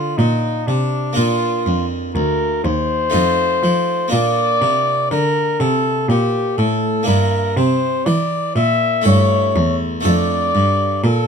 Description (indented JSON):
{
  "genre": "classical, baroque-style sonata movement with continuo",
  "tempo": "61 BPM",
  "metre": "3/4",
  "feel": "straight",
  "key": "D minor from 7.1 s",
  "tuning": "A4 = 439 Hz",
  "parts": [
    { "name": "mellow trumpet", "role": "melody", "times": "0.0-11.3 s", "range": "D4 to E5", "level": "-18 LUFS", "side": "left 2 dB", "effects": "none" },
    { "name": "harpsichord", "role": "accompaniment", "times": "0.0-11.3 s", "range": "D2 to A4", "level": "-20 LUFS", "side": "equal", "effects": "none" },
    { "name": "rich cello", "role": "bass", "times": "0.0-11.3 s", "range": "D2 to F3", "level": "-19 LUFS", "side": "right 2 dB", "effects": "none" }
  ],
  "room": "light reverb",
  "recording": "close, detailed microphones",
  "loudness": "-15 LUFS",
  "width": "side -6 dB against mid",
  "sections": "0.0-11.3 A section",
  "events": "none",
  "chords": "0.0 Gm; 1.2 Bb; 3.1 F7; 4.1 Bb; 7.1 Em7b5/G; 9.1 A7/G; 10.1 Dm/F"
}